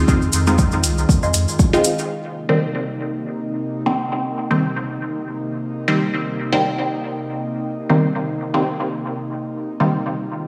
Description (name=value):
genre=dub techno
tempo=119 BPM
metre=4/4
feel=swing 56% on 16ths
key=C minor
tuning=A4 = 438 Hz
part: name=airy breathy pad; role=sustained chords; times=0.0-10.5 s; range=C3 to F4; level=-28 LUFS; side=equal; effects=chorus, sidechain pumping
part: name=filtered dub chord stab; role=stabs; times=0.0-10.0 s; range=Eb3 to F4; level=-23 LUFS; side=equal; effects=phaser, sidechain pumping, dub echo
part: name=soft dub sub bass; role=bass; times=0.0-1.5 s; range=C2 to F2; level=-22 LUFS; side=equal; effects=sidechain pumping
part: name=electronic kick drum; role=drums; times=0.1-1.7 s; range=none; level=-19 LUFS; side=equal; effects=overdrive
part: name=cabasa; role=percussion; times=0.1-2.1 s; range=none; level=-28 LUFS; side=equal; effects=none
part: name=electronic hi-hat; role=drums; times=0.3-2.0 s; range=none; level=-25 LUFS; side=equal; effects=overdrive, low-pass filter on hats, low-pass filter on room
part: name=filtered dub chord stab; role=riff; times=1.2-1.3 s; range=Eb5 to C6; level=-32 LUFS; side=equal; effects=phaser, cassette tape, sidechain pumping, dub echo
room=wet echo chamber reverb, RT60 2.3 s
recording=studio reverb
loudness=-20 LUFS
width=mono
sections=0.0-2.1 A section; 2.1-10.5 B section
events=none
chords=0.0 Fm7; 2.1 Cm7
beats=| 0.08 0.58 1.09 1.59 | 2.10 2.60 3.10 3.61 | 4.11 4.62 5.12 5.63 | 6.13 6.63 7.14 7.64 | 8.15 8.65 9.16 9.66 | 10.16